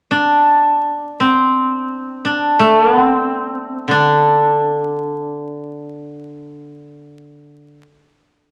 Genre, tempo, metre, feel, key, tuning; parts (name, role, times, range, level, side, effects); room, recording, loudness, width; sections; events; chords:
chinese traditional, Chinese solo plucked strings; free time; A4 = 440 Hz
steel-string zither; solo; 0.1-7.8 s; D3 to D4; -16 LUFS; equal
light reverb; vinyl crackle; -15 LUFS; mono
0.0-8.5 A section